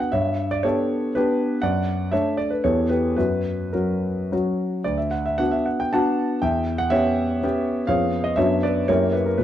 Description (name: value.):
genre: classical, romantic triple-time dance for piano with dotted rhythms.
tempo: 100-139 BPM.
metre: 3/4.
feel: rubato.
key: B minor.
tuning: A4 = 440 Hz.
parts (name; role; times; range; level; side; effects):
warm concert grand piano; solo; 0.0-9.4 s; D2 to A5; -20 LUFS; equal; none.
room: moderate stone room reverb, RT60 1.4 s.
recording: dark, warm production.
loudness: -20 LUFS.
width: side -11 dB against mid.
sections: 0.0-9.4 A section.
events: none.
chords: 0.1 G; 1.6 D/F#; 2.6 Em; 3.2 F#; 4.9 Bm/D; 6.4 C#m7b5/E; 7.9 C#7/E#; 8.4 Bm/F#; 8.9 F#7b9.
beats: | 0.12 0.64 1.15 | 1.63 2.12 2.64 | 3.18 3.74 4.32 | 4.87 5.40 5.94 | 6.43 6.92 7.44 | 7.89 8.37 8.89 | 9.40.